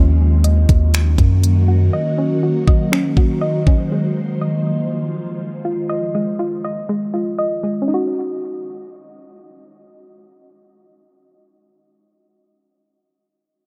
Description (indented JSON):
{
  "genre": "hip hop, atmospheric cloud-rap",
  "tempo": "121 BPM",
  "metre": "4/4",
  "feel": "half-time",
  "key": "Eb dorian",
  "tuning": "A4 = 439 Hz",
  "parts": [
    { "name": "ethereal airy pad", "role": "sustained chords", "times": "0.0-5.9 s", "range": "Eb3 to C5", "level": "-24 LUFS", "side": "equal", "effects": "ensemble chorus, built-in reverb, phaser, sidechain pumping, low-pass filter" },
    { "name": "soft round pluck", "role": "arpeggios", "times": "0.0-12.3 s", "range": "Ab3 to Eb5", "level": "-24 LUFS", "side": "equal", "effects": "chorus, low-pass filter, tape echo" },
    { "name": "long sustained 808-style bass", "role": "bass", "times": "0.0-1.9 s", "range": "Eb2 to Gb2", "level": "-15 LUFS", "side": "equal", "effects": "none" },
    { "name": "trap drum kit", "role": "drums", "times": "0.4-3.8 s", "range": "finger snaps, hi-hat, kick drum", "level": "-17 LUFS", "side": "equal", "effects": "none" }
  ],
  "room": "light reverb, digital ambience",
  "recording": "none",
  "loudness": "-18 LUFS",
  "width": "mono",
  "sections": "0.0-7.9 A section; 7.9-11.8 B section",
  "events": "filter sweep 0.0-7.9",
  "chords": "0.0 Ebm7; 3.9 Fm7; 7.9 Ebm7"
}